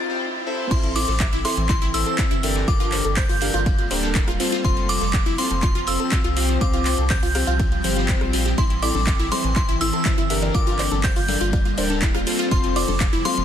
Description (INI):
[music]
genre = progressive house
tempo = 122 BPM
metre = 4/4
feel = straight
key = unclear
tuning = A4 = 441 Hz
[part]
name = chorused polysynth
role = stabs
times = 0.0-13.3 s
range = C4 to C5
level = -28 LUFS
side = left 3 dB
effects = sidechain pumping, ping-pong delay
[part]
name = riser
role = sound effects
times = 0.0-0.7 s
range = none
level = -32 LUFS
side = right 1 dB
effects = none
[part]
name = glassy synth bell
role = melody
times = 0.7-13.4 s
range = C6 to G6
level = -27 LUFS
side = equal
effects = chorus, sidechain pumping, ping-pong delay
[part]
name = evolving wavetable pad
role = sustained chords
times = 1.1-13.4 s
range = E3 to C4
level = -30 LUFS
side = right 2 dB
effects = chorus, built-in reverb, sidechain pumping
[part]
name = wide unison pluck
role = arpeggios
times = 0.7-13.4 s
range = E3 to F5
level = -29 LUFS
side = equal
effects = sidechain pumping, ping-pong delay
[part]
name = saturated sub bass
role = bass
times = 0.7-13.4 s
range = D1 to C2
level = -25 LUFS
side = equal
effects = sidechain pumping
[part]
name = deep house drum kit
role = drums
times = 0.7-13.4 s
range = crash cymbal, handclaps, hi-hat, rim click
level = -28 LUFS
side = right 1 dB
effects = overdrive, small room ambience, sidechain pumping on hats, sidechain pumping on cymbals
[part]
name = electronic kick drum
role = drums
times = 0.7-13.1 s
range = none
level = -22 LUFS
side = equal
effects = overdrive, small room ambience
[part]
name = vintage drum kit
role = drums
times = 0.7-13.4 s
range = hi-hat, ride cymbal, snare drum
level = -35 LUFS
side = left 2 dB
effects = sidechain pumping on cymbals, high-pass filter on cymbals, small room ambience, sidechain pumping on hats, high-pass filter on hats, high-pass filter on snare, high-pass filter on room
[part]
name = bongos and congas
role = percussion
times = 8.8-13.3 s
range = none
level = -32 LUFS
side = left 4 dB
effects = sidechain pumping on perc, small room ambience
[sound]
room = light reverb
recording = dense, heavily limited modern master, high-pass filter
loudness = -18 LUFS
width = side -9 dB against mid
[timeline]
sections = 0.7-13.4 A section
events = break 0.0-0.7; riser 0.0-0.7; drop 0.7-13.4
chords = 0.0 Csus4; 0.7 Am; 2.7 Gmadd9; 4.6 F; 6.6 Csus4; 8.6 Am; 10.5 Gmadd9; 12.5 F